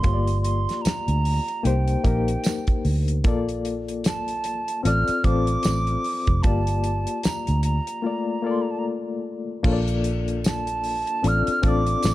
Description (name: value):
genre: lush 1970s-style soul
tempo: 75 BPM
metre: 4/4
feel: swing 58% on 16ths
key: Bb major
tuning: A4 = 438 Hz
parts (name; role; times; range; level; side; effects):
- hollow concert flute; melody; 0.0-12.1 s; G5 to F6; -27 LUFS; right 2 dB; none
- barky reed electric piano; accompaniment; 0.0-12.1 s; A3 to D5; -27 LUFS; left 4 dB; overdrive, tremolo
- vintage muted fingered electric bass; bass; 0.0-12.1 s; F1 to D2; -23 LUFS; right 1 dB; none
- damped 70s drum kit; drums; 0.0-12.1 s; crash cymbal, hi-hat, kick drum, snare drum; -25 LUFS; equal; none
- tambourine; percussion; 0.8-12.1 s; none; -35 LUFS; right 8 dB; none
room: studio reverb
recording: dark, warm production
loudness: -21 LUFS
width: side -16 dB against mid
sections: 0.0-9.6 A section; 9.6-12.1 A section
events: break 8.0-9.6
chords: 0.0 Gm7; 1.6 Cm7; 3.2 Bbmaj7; 4.8 Dm7/A; 6.4 Gm7; 8.0 Bbmaj7; 11.2 Dm7/A